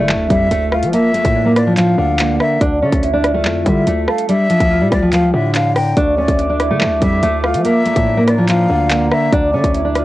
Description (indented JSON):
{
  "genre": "hip hop, drill",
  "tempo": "143 BPM",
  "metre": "4/4",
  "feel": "half-time",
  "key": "D harmonic minor",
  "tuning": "A4 = 440 Hz",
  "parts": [
    { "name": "nylon-string guitar", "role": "melody", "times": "0.0-10.0 s", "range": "D3 to D4", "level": "-16 LUFS", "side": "equal", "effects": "low-pass filter, cassette tape, analog delay" },
    { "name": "mellow electric guitar", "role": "accompaniment", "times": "0.0-10.0 s", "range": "D3 to Bb4", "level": "-21 LUFS", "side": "right 2 dB", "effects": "wide subtle chorus, low-pass filter" },
    { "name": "hard-hitting 808-style bass", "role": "bass", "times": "0.0-10.0 s", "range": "C#2 to F3", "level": "-20 LUFS", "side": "equal", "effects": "none" },
    { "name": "impact", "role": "sound effects", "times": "0.0-0.9 s", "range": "none", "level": "-36 LUFS", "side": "equal", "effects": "none" },
    { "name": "drill drum kit", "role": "drums", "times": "0.1-10.0 s", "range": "handclaps, hi-hat, kick drum, rim click", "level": "-19 LUFS", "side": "equal", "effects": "cassette tape" },
    { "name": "breathy jazz flute", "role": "second line", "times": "0.3-9.7 s", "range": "D5 to G5", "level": "-20 LUFS", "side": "left 2 dB", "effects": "analog delay" },
    { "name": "glass harmonica", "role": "sustained chords", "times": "6.0-10.0 s", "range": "D5 to D6", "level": "-25 LUFS", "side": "right 2 dB", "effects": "none" }
  ],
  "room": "little or no reverb",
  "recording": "home recording on cassette",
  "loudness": "-12 LUFS",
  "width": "side -16 dB against mid",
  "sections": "0.0-10.0 A section",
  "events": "impact 0.0-0.9",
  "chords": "0.0 Dmadd9; 0.9 Bb; 2.6 Dmadd9; 4.3 Gm7/D; 6.0 Dmadd9; 7.6 Bb; 9.3 Dmadd9"
}